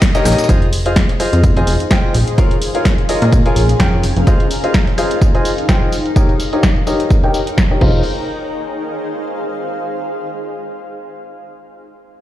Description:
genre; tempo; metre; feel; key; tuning
piano house; 127 BPM; 4/4; swing 55% on 16ths; F minor; A4 = 439 Hz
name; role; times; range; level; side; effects
rich studio string section; sustained chords; 0.0-0.5 s; Eb5 to Eb6; -31 LUFS; left 4 dB; none
breakbeat sampler-style drum kit; drums; 0.0-7.7 s; hi-hat, snare drum, tambourine; -31 LUFS; equal; sidechain pumping on perc, high-pass filter on perc, sidechain pumping on hats, high-pass filter on hats, high-pass filter on snare, high-pass filter on room
electronic kick drum; drums; 0.0-7.9 s; none; -14 LUFS; equal; none
punchy analog drum machine; drums; 0.0-7.9 s; crash cymbal, hi-hat, ride cymbal, rim click, shaker, snare drum; -21 LUFS; equal; low-pass filter on hats, low-pass filter on perc, low-pass filter on snare, low-pass filter on cymbals
clear concert grand piano; riff; 0.1-8.0 s; Eb4 to Ab5; -18 LUFS; left 2 dB; sidechain pumping, low-pass filter, ping-pong delay
plucky analog bass; bass; 0.3-4.2, 7.8-8.0 s; F1 to Bb2; -14 LUFS; equal; sidechain pumping
granular cloud pad; texture; 1.5-9.9 s; Db4 to F5; -23 LUFS; equal; built-in reverb, sidechain pumping
room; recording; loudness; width
light reverb, digital ambience; played on a big sound system in a bare room, stone room reverb; -12 LUFS; side -13 dB against mid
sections
0.5-8.1 A section; 8.1-9.9 B section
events
band accent 0.0; filter sweep on grand piano 0.5-8.1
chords
0.5 Fm7; 2.1 Bbm7; 4.0 Fm7; 6.2 Eb7; 7.8 Fm7

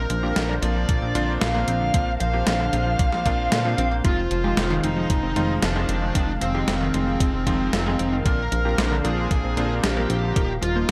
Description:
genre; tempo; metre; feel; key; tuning
synthwave; 114 BPM; 4/4; straight; unclear; A4 = 440 Hz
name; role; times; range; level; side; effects
bluesy overdriven lead guitar; melody; 0.0-10.9 s; C4 to F5; -29 LUFS; equal; distortion, digital delay
chorused pulse-width pad; sustained chords; 0.0-10.9 s; Eb3 to F5; -33 LUFS; equal; sidechain pumping
chorused synth bass; bass; 0.0-10.9 s; Eb1 to Bb2; -28 LUFS; equal; sidechain pumping
analog pluck; arpeggios; 0.1-10.9 s; D3 to C4; -34 LUFS; equal; chorus, phaser, tape echo
gated 80s digital drum machine; drums; 0.1-10.9 s; hi-hat, snare drum; -28 LUFS; equal; gated reverb, gated reverb snare
bright electric grand piano; stabs; 0.2-10.9 s; Eb3 to C5; -32 LUFS; equal; none
electronic kick drum; drums; 0.9-10.5 s; none; -25 LUFS; equal; none
room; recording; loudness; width
light reverb, digital ambience; none; -22 LUFS; mono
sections
0.0-10.9 A section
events
none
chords
0.0 Bbadd9; 4.0 Fm7; 8.3 Bbadd9; 10.4 Ebsus2

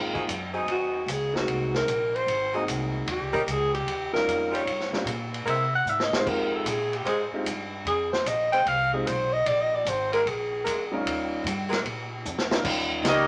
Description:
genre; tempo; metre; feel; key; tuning
jazz, big band swing; 150 BPM; 4/4; swing 67% on 8ths; Eb mixolydian; A4 = 440 Hz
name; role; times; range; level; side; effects
clear baby grand piano; accompaniment; 0.0-13.0 s; G3 to Bb4; -34 LUFS; equal; none
upright bass; bass; 0.0-13.3 s; Ab1 to C3; -38 LUFS; equal; none
warm saxophone section; sustained chords; 0.1-11.8 s; Gb3 to C5; -32 LUFS; equal; none
vintage drum kit; drums; 0.2-13.2 s; crash cymbal, hi-hat, kick drum, ride cymbal, snare drum; -33 LUFS; equal; none
mellow alto saxophone; melody; 0.7-11.1 s; Gb4 to G5; -28 LUFS; equal; none
clear trombone section; second line; 13.0-13.3 s; G3 to Eb4; -28 LUFS; equal; none
brilliant trumpet section; melody; 13.1-13.3 s; Db4 to Eb5; -24 LUFS; equal; none
room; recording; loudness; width
moderate club reverb, RT60 0.8 s; none; -27 LUFS; mono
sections
0.0-12.6 A section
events
alto saxophone solo 0.0-12.6; drum fill 5.9-6.3, 12.2-12.6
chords
0.0 Ab7; 3.1 Eb7; 4.7 Gm7b5; 5.5 C7alt; 6.3 Fm7; 9.5 Bb7; 11.1 Eb7; 11.9 Bb5; 12.6 Eb7

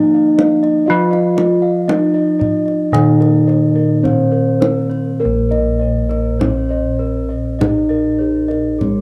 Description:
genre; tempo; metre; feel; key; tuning
Javanese gamelan; 50-64 BPM; 4/4; straight; Bb slendro; A4 = 438 Hz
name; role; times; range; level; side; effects
gamelan-type bronze metallophone; melody; 0.0-9.0 s; Ab3-40c to F4+20c; -18 LUFS; equal; cassette tape
gamelan-type bronze metallophone; accompaniment; 0.0-5.2 s; Eb3-20c to Bb3; -21 LUFS; equal; cassette tape
gamelan-type bossed gongs; arpeggios; 0.0-8.8 s; Ab4-40c to F5+20c; -26 LUFS; equal; cassette tape
gamelan-type bronze metallophone; arpeggios; 0.0-9.0 s; Ab4-40c to F5+20c; -27 LUFS; equal; cassette tape, analog delay
gamelan-type bossed gongs; bass; 0.0-9.0 s; Bb1 to Bb4; -22 LUFS; equal; none
kendang; percussion; 0.4-9.0 s; none; -23 LUFS; equal; none
room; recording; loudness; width
light reverb; home recording on cassette; -15 LUFS; mono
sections
0.0-5.2 A section; 5.2-9.0 B section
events
none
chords
none

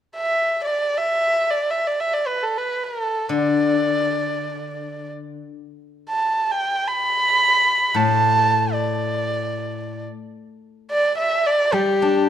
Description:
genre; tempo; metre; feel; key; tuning
chinese traditional, Chinese chamber ensemble; free time; none; none; D zhi mode; A4 = 441 Hz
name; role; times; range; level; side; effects
rich erhu; melody; 0.2-12.3 s; G4 to B5; -19 LUFS; right 2 dB; none
steel-string zither; accompaniment; 3.3-5.4, 7.9-12.3 s; A2 to D4; -23 LUFS; left 5 dB; none
room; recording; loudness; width
moderate recital hall reverb, RT60 1.3 s; dark, warm production; -18 LUFS; side -10 dB against mid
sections
0.0-10.6 A section; 10.6-12.3 B section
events
none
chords
none

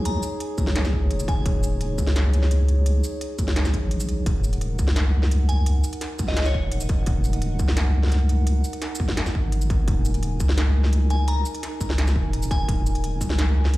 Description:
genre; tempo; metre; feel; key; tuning
half-time drum and bass; 171 BPM; 4/4; half-time; Eb minor; A4 = 440 Hz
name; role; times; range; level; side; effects
glassy synth bell; melody; 0.0-1.6, 5.5-6.6, 11.1-12.9 s; Db5 to Bb5; -34 LUFS; left 2 dB; chorus, phaser, tape echo
dark analog pad; sustained chords; 0.0-13.8 s; Eb4 to Ab5; -33 LUFS; right 1 dB; chorus, sidechain pumping
deep soft wobble bass; bass; 0.0-13.8 s; Eb1 to Db2; -21 LUFS; equal; chorus
industrial drum kit; drums; 0.1-13.8 s; hi-hat, shaker, snare drum; -30 LUFS; equal; studio reverb
electronic kick drum; drums; 0.6-13.3 s; none; -25 LUFS; equal; distortion, studio reverb
room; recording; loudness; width
digital ambience; played on a big sound system in a bare room, stone room reverb; -20 LUFS; side -18 dB against mid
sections
0.0-4.3 A section; 4.3-13.8 A section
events
drop 0.0-4.3, 4.3-13.8; break 3.9-4.3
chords
0.0 N.C.; 4.3 Ebm

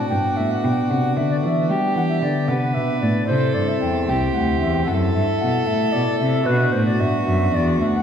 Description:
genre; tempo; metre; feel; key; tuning
classical, baroque-style sonata movement with continuo; 76 BPM (dotted quarters); 12/8; straight; G major; A4 = 440 Hz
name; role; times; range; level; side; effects
bright baroque flute; melody; 0.0-8.0 s; B4 to G5; -24 LUFS; left 2 dB; none
warm violin; second line; 0.0-8.0 s; F#4 to B4; -27 LUFS; right 4 dB; none
pipe organ, flutes; accompaniment; 0.0-8.0 s; C2 to D5; -22 LUFS; left 2 dB; none
rich cello; bass; 0.0-8.0 s; C2 to G3; -22 LUFS; right 1 dB; none
room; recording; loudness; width
wet recital hall reverb, RT60 1.6 s; heard from further back in the room; -17 LUFS; side -8 dB against mid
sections
0.0-8.0 A section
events
none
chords
0.1 G; 3.3 C; 4.9 F#m7b5; 6.5 Bm

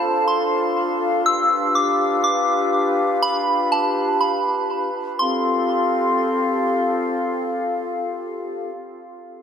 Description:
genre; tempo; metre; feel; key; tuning
hip hop; 122 BPM; 4/4; half-time; F lydian; A4 = 440 Hz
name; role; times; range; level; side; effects
soft synth bell; melody; 0.0-6.6 s; A5 to E6; -21 LUFS; equal; chorus, phaser, tape echo
mellow large flute ensemble; sustained chords; 0.0-8.7 s; C4 to F5; -21 LUFS; left 1 dB; none
room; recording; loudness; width
wet cathedral reverb, RT60 6.2 s; dreamy mix soaked in reverb; -18 LUFS; side -8 dB against mid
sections
0.0-5.2 A section; 5.2-9.1 B section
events
none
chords
0.0 Dm7; 1.3 G7; 5.2 Fadd9

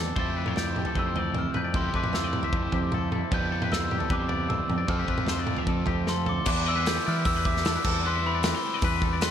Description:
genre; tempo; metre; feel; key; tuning
math rock and midwest emo; 152 BPM; 4/4; straight; F lydian; A4 = 440 Hz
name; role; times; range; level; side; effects
clean electric guitar; accompaniment; 0.0-6.5 s; F2 to A4; -36 LUFS; right 6 dB; spring reverb, slapback echo
twangy electric guitar; arpeggios; 0.0-9.3 s; G4 to E5; -33 LUFS; left 8 dB; slapback echo
growling fingered electric bass; bass; 0.0-9.3 s; E2 to E3; -30 LUFS; equal; overdrive
glockenspiel with rubber mallets; melody; 0.2-9.3 s; B5 to A6; -31 LUFS; equal; slapback echo
crunchy overdriven guitar; riff; 0.2-9.3 s; A2 to F4; -35 LUFS; right 1 dB; slapback echo
loose indie drum kit; drums; 0.2-9.3 s; crash cymbal, hi-hat, kick drum, snare drum, toms; -29 LUFS; equal; none
room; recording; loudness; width
light reverb, studio reverb; none; -24 LUFS; side -9 dB against mid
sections
0.0-6.5 A section; 6.5-9.3 B section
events
drum fill 0.0, 6.1-6.5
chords
0.2 Fmaj9; 6.5 Em7; 7.8 Cmaj9/E

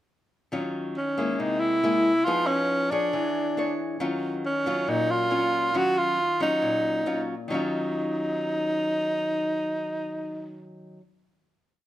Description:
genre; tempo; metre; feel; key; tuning
bossa nova; 138 BPM; 4/4; straight; Eb minor; A4 = 441 Hz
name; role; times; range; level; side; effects
nylon-string guitar; accompaniment; 0.5-11.0 s; Bb2 to Db5; -29 LUFS; left 2 dB; none
breathy tenor saxophone; melody; 1.0-10.6 s; Db4 to Gb4; -24 LUFS; right 1 dB; none
room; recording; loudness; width
light reverb; none; -23 LUFS; side -13 dB against mid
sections
0.5-7.5 A section; 7.5-11.0 final chord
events
none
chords
0.5 Ebm9; 1.4 Caug7; 2.3 Fm7b5; 3.1 E6; 4.0 Ebm9

